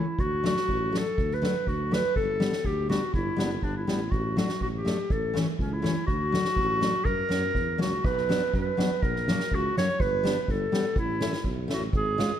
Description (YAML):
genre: alpine folk, alpine dance band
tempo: 122 BPM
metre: 2/4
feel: straight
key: D major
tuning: A4 = 444 Hz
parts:
  - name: warm clarinet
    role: melody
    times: 0.0-12.4 s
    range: C#4 to C#5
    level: -28 LUFS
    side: equal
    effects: none
  - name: picked steel-string acoustic guitar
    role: accompaniment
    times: 0.0-12.3 s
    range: E3 to E#4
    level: -31 LUFS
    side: left 2 dB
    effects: none
  - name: dark tuba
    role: bass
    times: 0.0-12.3 s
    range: F#1 to F#2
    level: -32 LUFS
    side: right 1 dB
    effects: none
  - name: soft-mallet drum kit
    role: drums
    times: 0.2-12.3 s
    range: crash cymbal, kick drum, snare drum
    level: -31 LUFS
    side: right 1 dB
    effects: none
room: light reverb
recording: dark, warm production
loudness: -24 LUFS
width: side -10 dB against mid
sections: 0.0-8.0 A section; 8.0-12.4 B section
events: none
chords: 0.2 D; 2.2 G; 4.1 D/A; 5.1 A; 6.1 D; 7.1 F#7; 8.0 Bm; 9.0 F#/A#; 10.0 Gadd9; 11.0 A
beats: | 0.18 0.68 | 1.18 1.67 | 2.15 2.64 | 3.13 3.62 | 4.12 4.61 | 5.10 5.58 | 6.07 6.57 | 7.05 7.55 | 8.04 8.54 | 9.03 9.51 | 10.00 10.48 | 10.96 11.45 | 11.94